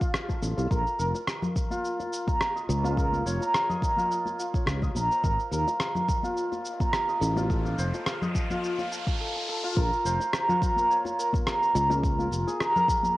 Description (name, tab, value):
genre	organic downtempo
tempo	106 BPM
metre	4/4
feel	swing 54% on 16ths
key	Bb minor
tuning	A4 = 441 Hz
part	santur	arpeggios	0.0-13.2 s	F4 to Bb5	-27 LUFS	right 1 dB	cassette tape, analog delay
part	electronic cabasa and rim click	drums	0.0-13.1 s	none	-34 LUFS	equal	cassette tape
part	electronic kick drum	drums	0.0-13.0 s	none	-28 LUFS	equal	cassette tape
part	bongos and congas	percussion	0.3-13.1 s	none	-35 LUFS	left 2 dB	none
part	sustaining fretless electric bass	bass	0.4-12.4 s	F1 to Eb2	-28 LUFS	equal	analog chorus, sidechain pumping
part	riser	sound effects	6.2-9.8 s	none	-37 LUFS	equal	none
room	wet spring reverb, RT60 2.2 s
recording	home recording on cassette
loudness	-24 LUFS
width	side -17 dB against mid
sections	0.0-9.8 A section; 9.8-13.2 B section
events	riser 6.2-9.8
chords	0.0 F7; 0.7 Bbm; 5.2 N.C.; 7.5 F7; 9.8 Bbm7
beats	0.15 | 0.71 1.28 1.84 2.41 | 2.98 3.54 4.11 4.67 | 5.24 5.81 6.37 6.94 | 7.50 8.07 8.64 9.20 | 9.77 10.33 10.90 11.47 | 12.03 12.60 13.16